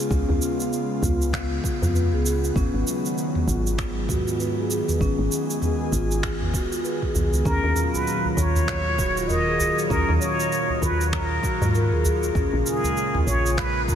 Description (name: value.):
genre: organic downtempo.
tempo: 98 BPM.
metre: 4/4.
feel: swing 59% on 16ths.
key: unclear.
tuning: A4 = 439 Hz.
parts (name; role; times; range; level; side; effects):
airy breathy pad; sustained chords; 0.0-13.9 s; Bb2 to Ab4; -28 LUFS; equal; chorus, sidechain pumping.
marimba with soft mallets; arpeggios; 0.0-13.9 s; Db4 to Cb5; -28 LUFS; equal; tape echo.
woody FM bass; bass; 0.1-13.9 s; Eb1 to Bb2; -25 LUFS; equal; sidechain pumping.
electronic kick drum; drums; 0.1-13.9 s; none; -28 LUFS; equal; none.
organic electronic drum kit; drums; 0.1-13.9 s; finger snaps, shaker, toms; -29 LUFS; right 1 dB; none.
trumpet with plunger mute; melody; 7.5-13.9 s; Ab4 to Eb5; -25 LUFS; equal; ping-pong delay.
udu; percussion; 7.9-13.2 s; none; -31 LUFS; right 1 dB; none.
room: moderate huge ambient reverb, RT60 7.6 s.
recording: dreamy mix soaked in reverb.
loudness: -20 LUFS.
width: side -9 dB against mid.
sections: 0.0-13.9 A section.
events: none.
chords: 0.0 Db7; 2.6 Abm7; 7.5 Ebmadd9; 12.4 Bbm7.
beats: | 0.11 0.72 1.33 1.95 | 2.56 3.17 3.78 4.39 | 5.01 5.62 6.23 6.84 | 7.46 8.07 8.68 9.29 | 9.90 10.52 11.13 11.74 | 12.35 12.96 13.58.